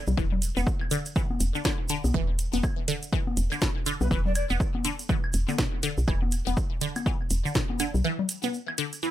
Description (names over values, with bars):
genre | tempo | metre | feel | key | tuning
minimal techno | 122 BPM | 4/4 | swing 60% on 16ths | unclear | A4 = 439 Hz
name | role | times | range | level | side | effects
woody FM bass | bass | 0.1-8.0 s | E1 to B1 | -27 LUFS | equal | sidechain pumping
congas and claves | percussion | 0.1-8.8 s | none | -33 LUFS | left 4 dB | digital delay
tube shaker | percussion | 0.1-9.1 s | none | -38 LUFS | right 4 dB | none
resonant blip pluck | riff | 0.2-9.1 s | B2 to B3 | -30 LUFS | equal | phaser, vintage 12-bit sampler grit, sidechain pumping, ping-pong delay
electronic kick drum | drums | 0.2-7.7 s | none | -28 LUFS | equal | overdrive
house drum kit | drums | 0.4-9.0 s | hi-hat, snare drum | -30 LUFS | equal | overdrive
breathy mellow jazz flute | melody | 4.0-4.4 s | B4 to D5 | -34 LUFS | equal | digital delay
room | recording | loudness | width
little or no reverb | none | -25 LUFS | side -13 dB against mid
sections
0.0-9.1 A section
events
break 8.0-9.1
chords
none